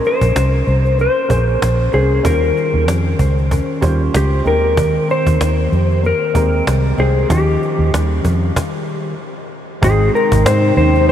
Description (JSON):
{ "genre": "indie pop, bedroom pop", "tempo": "95 BPM", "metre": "4/4", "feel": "swing 55% on 16ths", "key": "Ab major", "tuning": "A4 = 440 Hz", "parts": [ { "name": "clean lap steel guitar", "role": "melody", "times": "0.0-11.1 s", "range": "G4 to C5", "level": "-18 LUFS", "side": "left 2 dB", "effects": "lush chorus, analog delay" }, { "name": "mellow electric guitar", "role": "accompaniment", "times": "0.0-11.1 s", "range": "Eb3 to C5", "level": "-24 LUFS", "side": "left 4 dB", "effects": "lush chorus, vibrato effect" }, { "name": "warm upright piano", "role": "accompaniment", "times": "0.0-11.1 s", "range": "F3 to G5", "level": "-24 LUFS", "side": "right 5 dB", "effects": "none" }, { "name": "cajon", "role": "drums", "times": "0.0-11.1 s", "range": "none", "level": "-23 LUFS", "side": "equal", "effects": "none" }, { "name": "vintage muted fingered electric bass", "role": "bass", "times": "0.2-11.1 s", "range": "Ab1 to Ab2", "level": "-15 LUFS", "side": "equal", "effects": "none" }, { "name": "warbly tape-like pad", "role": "sustained chords", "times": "10.1-11.1 s", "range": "C3 to G5", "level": "-18 LUFS", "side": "right 2 dB", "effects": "chorus, built-in reverb" } ], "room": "moderate huge ambient reverb, RT60 7.9 s", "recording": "dreamy mix soaked in reverb", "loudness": "-13 LUFS", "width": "side -10 dB against mid", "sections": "0.0-9.8 A section; 9.8-11.1 B section", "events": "stop 8.6-9.8", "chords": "0.0 Bbm9; 2.3 Eb13; 4.5 Abmaj9/Eb; 7.3 Eb9; 9.8 Abmaj7" }